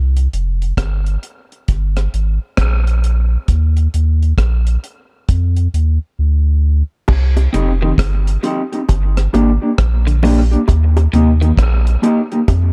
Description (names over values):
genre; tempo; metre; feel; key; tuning
dub reggae; 67 BPM; 4/4; swing 63% on 16ths; C minor; A4 = 440 Hz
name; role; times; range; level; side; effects
warm sub bass; bass; 0.0-12.7 s; F1 to F2; -16 LUFS; equal; none
deep reggae drum kit; drums; 0.2-12.7 s; crash cymbal, hi-hat, kick drum, rim click; -20 LUFS; equal; none
bongos; percussion; 7.1-12.7 s; none; -26 LUFS; equal; dub echo
mellow electric guitar; accompaniment; 7.5-12.4 s; Bb3 to G4; -19 LUFS; equal; dub echo
clean electric guitar; arpeggios; 7.5-11.6 s; Bb2 to Eb3; -28 LUFS; equal; dub echo
room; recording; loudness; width
small room ambience; dark, warm production; -15 LUFS; mono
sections
0.0-7.1 A section; 7.1-12.7 B section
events
break 0.0-7.1; drums muted 6.2-7.1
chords
0.0 C5; 1.7 Gm; 3.5 Eb5; 5.3 Dm; 7.1 Cm; 8.9 Gm; 10.7 Eb